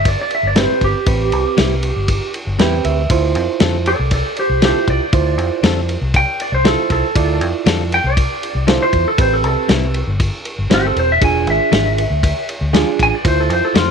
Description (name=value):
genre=straight-eighth soul blues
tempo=118 BPM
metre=4/4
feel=straight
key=A minor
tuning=A4 = 439 Hz
part: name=clean lap steel guitar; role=melody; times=0.0-13.9 s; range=F4 to G#5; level=-18 LUFS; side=equal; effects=none
part: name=vintage muted fingered electric bass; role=bass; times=0.0-13.9 s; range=E1 to F2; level=-19 LUFS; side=left 1 dB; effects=none
part: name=warm soul drum kit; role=drums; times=0.1-13.9 s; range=kick drum, ride cymbal, snare drum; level=-18 LUFS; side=left 1 dB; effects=none
part: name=overdriven reed electric piano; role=accompaniment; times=0.6-13.9 s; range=C4 to G5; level=-20 LUFS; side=right 13 dB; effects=none
part: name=direct-recorded clean electric guitar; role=stabs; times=0.6-13.9 s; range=A2 to A4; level=-22 LUFS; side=left 14 dB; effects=none
room=little or no reverb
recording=1960s-style stereo with parts hard left and right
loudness=-13 LUFS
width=side -6 dB against mid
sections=0.0-13.9 A section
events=electric slide guitar solo 0.0-13.9; reed electric piano fill 2.3-3.1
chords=0.0 Am7; 3.1 Dm7; 9.2 Am7; 11.2 E7b9; 13.2 Dm7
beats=0.06 0.57 | 1.07 1.58 2.09 2.60 | 3.10 3.61 4.12 4.63 | 5.13 5.64 6.15 6.65 | 7.16 7.67 8.18 8.68 | 9.19 9.70 10.20 10.71 | 11.22 11.72 12.23 12.74 | 13.24 13.75